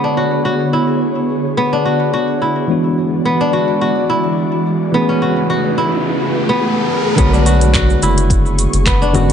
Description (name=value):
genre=organic downtempo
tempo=107 BPM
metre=4/4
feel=swing 54% on 16ths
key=B dorian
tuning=A4 = 438 Hz
part: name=tine electric piano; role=accompaniment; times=0.0-9.3 s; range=D3 to C#5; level=-20 LUFS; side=equal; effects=overdrive, fast stereo tremolo, sidechain pumping, digital delay
part: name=ethereal airy pad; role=sustained chords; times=0.0-9.3 s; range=C#3 to C#6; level=-19 LUFS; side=right 1 dB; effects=ensemble chorus, built-in reverb, sidechain pumping
part: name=kora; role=arpeggios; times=0.0-9.3 s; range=B3 to F#4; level=-17 LUFS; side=left 1 dB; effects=low-pass filter, digital delay
part: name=organic electronic drum kit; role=drums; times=0.0-9.3 s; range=cabasa, congas, handclaps, hi-hat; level=-20 LUFS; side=equal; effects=low-pass filter on perc, low-pass filter on hats, low-pass filter on snare, low-pass filter on room
part: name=riser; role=sound effects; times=4.5-7.2 s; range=none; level=-23 LUFS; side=equal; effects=none
part: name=warm sub bass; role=bass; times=7.2-9.3 s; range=F#1 to B1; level=-14 LUFS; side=equal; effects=none
part: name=electronic kick drum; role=drums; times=7.2-9.0 s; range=none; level=-16 LUFS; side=equal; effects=none
room=moderate scoring stage reverb, RT60 1.9 s, digital ambience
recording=nothing above 10.3 kHz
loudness=-12 LUFS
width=side -8 dB against mid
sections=0.0-7.2 A section; 7.2-9.3 B section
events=filter sweep on tine electric piano 0.0-7.2; filter sweep on ambient pad 0.0-7.2; riser 4.5-7.2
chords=0.0 Bm69; 2.7 E9; 4.9 Amaj9; 7.2 Bm69